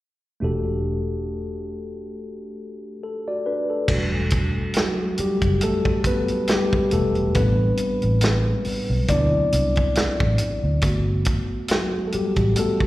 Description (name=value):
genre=R&B, neo-soul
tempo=69 BPM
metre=4/4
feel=swing 56% on 16ths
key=E minor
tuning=A4 = 440 Hz
part: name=mellow tine electric piano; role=accompaniment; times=0.4-12.9 s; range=F#3 to D5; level=-23 LUFS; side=left 1 dB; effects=slow stereo tremolo, plate reverb, slapback echo
part: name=vintage muted fingered electric bass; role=bass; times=0.4-12.5 s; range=E1 to D2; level=-22 LUFS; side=equal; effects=none
part: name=warm soul drum kit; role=drums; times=3.9-12.9 s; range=crash cymbal, hi-hat, kick drum, snare drum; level=-24 LUFS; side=equal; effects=none
room=light reverb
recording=live gig heard through the venue's PA, recital hall reverb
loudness=-19 LUFS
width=side -16 dB against mid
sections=0.4-3.9 A section; 3.9-12.9 B section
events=tine electric piano solo 3.9-12.9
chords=0.4 Em11; 7.4 Am11; 9.1 D13; 10.8 Gmaj7